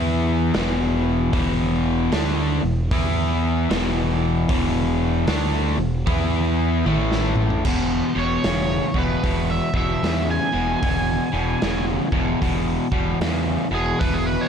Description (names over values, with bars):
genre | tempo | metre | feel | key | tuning
blues rock power trio and southern rock | 76 BPM | 4/4 | swing 63% on 8ths | E mixolydian | A4 = 440 Hz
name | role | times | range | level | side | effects
crunchy overdriven guitar | riff | 0.0-14.5 s | E2 to E4 | -22 LUFS | left 1 dB | none
growling fingered electric bass | bass | 0.0-14.4 s | E1 to E2 | -24 LUFS | equal | overdrive
raw garage drum kit | drums | 0.5-14.2 s | crash cymbal, hi-hat, kick drum, snare drum, toms | -26 LUFS | equal | none
overdriven slide guitar | melody | 8.2-14.5 s | G#4 to G#5 | -26 LUFS | right 2 dB | none
room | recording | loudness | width
light reverb | none | -19 LUFS | side -7 dB against mid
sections
0.0-7.7 A section; 7.7-14.5 B section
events
drum fill 6.9-7.7; electric slide guitar solo 7.7-14.5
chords
0.0 E5; 6.9 A5; 7.7 E